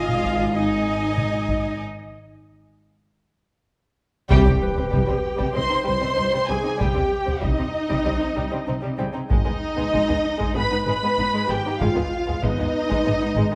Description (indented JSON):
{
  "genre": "cinematic, suspense film score",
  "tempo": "96 BPM",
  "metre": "4/4",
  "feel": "straight",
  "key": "C harmonic minor",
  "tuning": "A4 = 441 Hz",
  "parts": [
    { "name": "dark studio violin section", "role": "melody", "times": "0.0-13.6 s", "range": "Eb5 to C6", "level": "-30 LUFS", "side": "equal", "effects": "none" },
    { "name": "warm studio violin section", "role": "second line", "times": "0.0-13.6 s", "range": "G3 to F5", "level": "-33 LUFS", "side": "equal", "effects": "none" },
    { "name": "rich studio viola section", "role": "accompaniment", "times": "0.0-13.6 s", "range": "Eb4 to Eb5", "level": "-29 LUFS", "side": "equal", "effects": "none" },
    { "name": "rich studio cello section", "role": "bass", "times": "0.0-13.6 s", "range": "Ab2 to F4", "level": "-31 LUFS", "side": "equal", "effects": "none" },
    { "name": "rich studio double bass section", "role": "bass", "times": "0.0-13.4 s", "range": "Ab1 to C2", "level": "-28 LUFS", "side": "equal", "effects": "none" },
    { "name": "taiko ensemble", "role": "drums", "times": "0.1-13.5 s", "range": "none", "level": "-29 LUFS", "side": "equal", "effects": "none" },
    { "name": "impact", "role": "sound effects", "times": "4.5-6.8 s", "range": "none", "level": "-33 LUFS", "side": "equal", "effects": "none" },
    { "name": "concert harp", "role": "texture", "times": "4.6-13.6 s", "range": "Cb4 to D6", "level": "-35 LUFS", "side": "equal", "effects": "none" }
  ],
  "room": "moderate scoring stage reverb, RT60 1.5 s",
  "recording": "none",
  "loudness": "-22 LUFS",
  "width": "mono",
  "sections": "0.0-4.3 A section; 4.3-13.6 B section",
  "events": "break 1.8-4.3; drum fill 3.7-4.3; band accent 4.3-4.9; impact 4.3-6.8",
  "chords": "0.0 Ab5; 4.3 Cm; 9.3 Abm",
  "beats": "0.56 1.18 | 1.81 2.43 3.06 3.68 | 4.31 4.93 5.56 6.18 | 6.81 7.43 8.06 8.68 | 9.31 9.93 10.56 11.18 | 11.81 12.43 13.06"
}